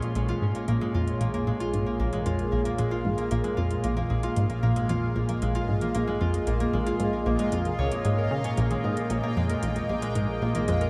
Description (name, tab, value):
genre	ambient, sequencer-driven space music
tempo	114 BPM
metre	4/4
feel	straight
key	Bb dorian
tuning	A4 = 440 Hz
part	phased analog pad	sustained chords	0.0-10.9 s	Bb2 to Eb5	-32 LUFS	equal	phaser, chorus
part	concert harp	arpeggios	0.0-10.9 s	Ab3 to Db5	-33 LUFS	equal	tape echo
part	analog drone	bass	0.9-10.9 s	Bb1	-41 LUFS	equal	chorus
part	soft vintage rhythm box	percussion	0.0-10.9 s	hi-hat, toms	-43 LUFS	equal	tape echo
part	bubbling stepped-filter texture	texture	0.0-10.9 s	Db4 to C6	-41 LUFS	equal	chorus, built-in reverb
part	plucky analog bass	riff	0.2-10.9 s	Bb1 to Db3	-30 LUFS	equal	ensemble chorus, tape echo
room	moderate huge ambient reverb, RT60 8.5 s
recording	in a vast, echoing space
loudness	-27 LUFS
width	mono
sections	0.0-10.9 A section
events	none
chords	0.0 Bbm7